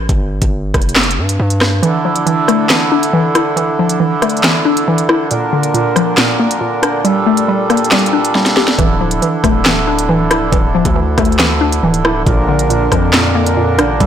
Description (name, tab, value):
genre	hip hop, drill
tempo	138 BPM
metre	4/4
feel	half-time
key	D minor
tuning	A4 = 440 Hz
part	distorted 808-style bass	bass	0.0-1.8, 8.8-14.1 s	C#1 to G2	-17 LUFS	equal	distortion
part	drill drum kit	drums	0.1-14.1 s	handclaps, hi-hat, kick drum, rim click, snare drum	-15 LUFS	equal	none
part	hollow square pluck	accompaniment	1.8-14.1 s	Bb2 to G4	-15 LUFS	left 2 dB	chorus, low-pass filter
part	hand-pumped harmonium	sustained chords	1.8-14.1 s	Bb2 to Bb4	-16 LUFS	right 2 dB	none
room	moderate scoring stage reverb, RT60 1.6 s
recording	blown-out, overdriven recording, overdrive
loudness	-11 LUFS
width	side -9 dB against mid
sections	0.0-14.1 A section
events	break 0.0-1.8; kick muted 1.8-8.8; drum fill 8.4-8.8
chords	0.1 Fsus2; 1.8 Dmadd9; 5.3 Bb; 7.0 Gmadd9; 8.8 Dmadd9; 12.3 Bb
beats	| 0.09 0.53 0.96 1.40 | 1.83 2.27 2.70 3.13 | 3.57 4.00 4.44 4.87 | 5.31 5.74 6.18 6.61 | 7.05 7.48 7.92 8.35 | 8.79 9.22 9.66 10.09 | 10.53 10.96 11.40 11.83 | 12.27 12.70 13.13 13.57 | 14.00